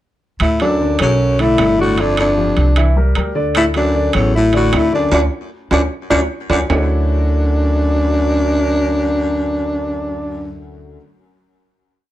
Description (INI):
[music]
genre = Afro-Cuban jazz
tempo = 153 BPM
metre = 4/4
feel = straight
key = D major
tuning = A4 = 441 Hz
[part]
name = growling tenor saxophone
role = melody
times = 0.4-10.6 s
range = C#4 to F#4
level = -17 LUFS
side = equal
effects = none
[part]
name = edgy baritone saxophone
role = second line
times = 0.4-10.6 s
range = E2 to A2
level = -22 LUFS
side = left 3 dB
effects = tape echo
[part]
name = upright bass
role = bass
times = 0.4-11.0 s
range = G1 to D2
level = -18 LUFS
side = equal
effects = none
[part]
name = claves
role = percussion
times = 0.4-6.8 s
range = none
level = -30 LUFS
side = right 7 dB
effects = none
[part]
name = timbales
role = percussion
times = 0.4-6.8 s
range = none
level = -23 LUFS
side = right 5 dB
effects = none
[part]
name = warm grand piano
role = accompaniment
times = 0.6-11.0 s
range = D3 to E5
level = -22 LUFS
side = left 1 dB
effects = none
[sound]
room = moderate small room reverb, RT60 0.6 s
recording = none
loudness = -13 LUFS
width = side -14 dB against mid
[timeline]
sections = 0.4-6.7 A section; 6.7-9.8 final chord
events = drum fill 5.1-6.7; band accent 5.1-6.7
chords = 0.4 D; 1.2 Bm7; 2.0 G5; 2.8 C9; 3.5 Dmaj7; 6.7 Dmaj9